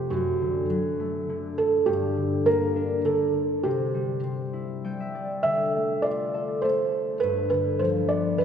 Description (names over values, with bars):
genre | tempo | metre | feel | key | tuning
children's music, lullaby | 102 BPM | 3/4 | rubato | unclear | A4 = 440 Hz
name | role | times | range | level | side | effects
felt-muted upright piano | melody | 0.0-8.4 s | F#4 to E5 | -25 LUFS | right 3 dB | none
concert harp | accompaniment | 0.0-8.4 s | F2 to G5 | -27 LUFS | left 2 dB | none
room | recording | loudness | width
wet church reverb, RT60 2.7 s | recorded in a church or concert hall | -23 LUFS | side -8 dB against mid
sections
0.0-8.4 A section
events
harp fill 4.5-5.4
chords
0.1 D/F#; 1.9 Gm; 3.6 C; 5.4 Dm; 7.2 G7